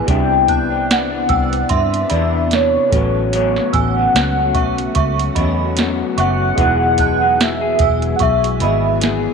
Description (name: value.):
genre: indie pop, bedroom pop.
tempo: 74 BPM.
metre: 4/4.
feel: swing 55% on 16ths.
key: unclear.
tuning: A4 = 440 Hz.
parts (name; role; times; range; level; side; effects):
electric guitar through a small old amp; accompaniment; 0.0-9.3 s; A2 to G#4; -22 LUFS; left 12 dB; wide subtle chorus, warbly pitch drift.
warm upright piano; accompaniment; 0.0-9.3 s; G3 to E5; -29 LUFS; right 12 dB; cassette tape.
ensemble organ-string; sustained chords; 0.0-9.3 s; C3 to G#4; -25 LUFS; left 1 dB; ensemble chorus.
warm velvety synth lead; melody; 0.1-9.3 s; C#5 to G5; -17 LUFS; right 1 dB; wide subtle chorus, slapback echo.
vintage muted fingered electric bass; bass; 0.1-9.3 s; E1 to G2; -20 LUFS; equal; none.
soft vintage rhythm box; drums; 0.1-9.2 s; hi-hat, kick drum, snare drum; -20 LUFS; right 2 dB; none.
synth chime; second line; 0.5-8.8 s; D5 to F#6; -24 LUFS; right 11 dB; ensemble chorus, tremolo, lush chorus, slapback echo.
room: light reverb, digital ambience.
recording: 1960s-style stereo with parts hard left and right.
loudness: -13 LUFS.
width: side -5 dB against mid.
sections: 0.0-9.3 A section.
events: none.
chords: 0.1 Cmaj9; 2.9 A69; 6.6 Emaj7.